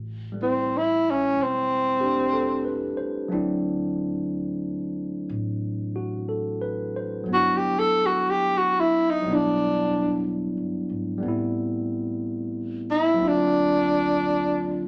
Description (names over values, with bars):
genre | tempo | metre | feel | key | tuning
jazz ballad | 61 BPM | 4/4 | swing 67% on 8ths | unclear | A4 = 439 Hz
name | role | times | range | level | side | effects
upright bass | bass | 0.0-14.9 s | E1 to D2 | -40 LUFS | equal | none
barky tine electric piano | accompaniment | 0.3-14.9 s | F#3 to C5 | -29 LUFS | equal | overdrive
breathy tenor saxophone | melody | 0.4-14.9 s | C4 to A4 | -24 LUFS | equal | none
room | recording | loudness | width
moderate large studio reverb, RT60 1.1 s | none | -25 LUFS | mono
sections
0.0-14.9 A section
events
tenor saxophone solo 0.0-14.9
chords
0.0 Am7; 3.3 D9; 7.3 Gmaj13; 9.2 Em9; 11.2 Am9; 13.2 D7alt